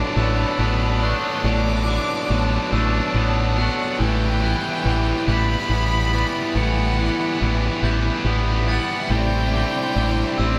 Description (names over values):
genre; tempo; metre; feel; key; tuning
post-rock; 47 BPM (dotted quarters); 6/8; straight; unclear; A4 = 440 Hz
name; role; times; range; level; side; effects
rich studio string section; sustained chords; 0.0-10.6 s; G4 to C6; -35 LUFS; equal; none
glockenspiel with hard plastic mallets; arpeggios; 0.0-10.6 s; D6 to A6; -36 LUFS; equal; none
twangy electric guitar; arpeggios; 0.0-10.6 s; A2 to B3; -33 LUFS; equal; none
distorted electric guitar; riff; 0.0-10.6 s; B2 to E4; -28 LUFS; equal; distortion
tight distorted guitar; riff; 0.0-10.6 s; B2 to E4; -28 LUFS; equal; distortion
clear violin; melody; 0.2-10.6 s; D5 to D6; -31 LUFS; equal; none
deep dub fingered electric bass; bass; 0.2-10.6 s; A1; -23 LUFS; equal; none
room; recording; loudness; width
wet studio ambience, RT60 0.5 s; band playing live in one room; -21 LUFS; mono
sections
0.0-10.6 A section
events
none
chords
0.0 Bm7/A; 4.0 Emadd9/A; 9.1 Cadd9/A